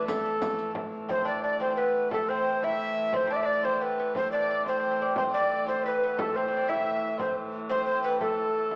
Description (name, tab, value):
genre	medieval dance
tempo	118 BPM (dotted quarters)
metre	6/8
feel	straight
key	A minor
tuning	A4 = 438 Hz
part	mellow hollow tenor recorder	melody	0.0-8.8 s	A4 to E5	-30 LUFS	equal	none
part	lute	second line	0.0-8.8 s	A3 to E4	-35 LUFS	equal	none
part	warm fiddle	second line	0.0-8.8 s	A4 to E5	-37 LUFS	equal	none
part	dark hurdy-gurdy	drone	0.0-8.8 s	A2 to E3	-39 LUFS	equal	none
part	frame drum	percussion	0.1-8.8 s	none	-42 LUFS	equal	none
part	riq	percussion	0.1-0.7 s	none	-43 LUFS	equal	none
room	wet recital hall reverb, RT60 1.6 s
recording	small speaker sound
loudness	-28 LUFS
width	mono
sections	0.0-1.1 A section; 1.1-8.8 B section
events	none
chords	none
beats	| 0.08 0.59 | 1.10 1.61 | 2.12 2.63 | 3.14 3.65 | 4.16 4.66 | 5.17 5.68 | 6.18 6.69 | 7.20 7.71 | 8.21 8.72